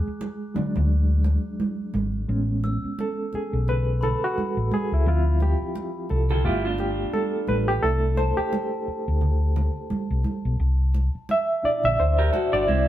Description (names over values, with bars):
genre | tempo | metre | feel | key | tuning
lush 1970s-style soul | 87 BPM | 4/4 | swing 58% on 16ths | unclear | A4 = 441 Hz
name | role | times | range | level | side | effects
barky reed electric piano | accompaniment | 0.0-12.9 s | Bb2 to E5 | -26 LUFS | right 1 dB | overdrive, fast tremolo
hollow-body short-scale fingered electric bass | bass | 0.1-12.9 s | G1 to D2 | -22 LUFS | equal | none
congas | percussion | 0.2-12.9 s | none | -31 LUFS | right 3 dB | none
glockenspiel with soft plastic mallets | texture | 2.6-10.5 s | A5 to E6 | -38 LUFS | left 5 dB | none
electric guitar through a small old amp | riff | 6.3-7.7, 12.2-12.9 s | C4 to Bb4 | -27 LUFS | right 1 dB | none
room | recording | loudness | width
light reverb | band playing live in one room | -21 LUFS | side -13 dB against mid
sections
0.0-2.3 A section; 2.3-12.9 B section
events
reed electric piano solo 0.0-2.3, 2.3-12.9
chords
0.0 E7 (rootless); 2.3 Amaj7; 5.1 Dm7; 6.4 G7; 7.8 C69; 10.6 C9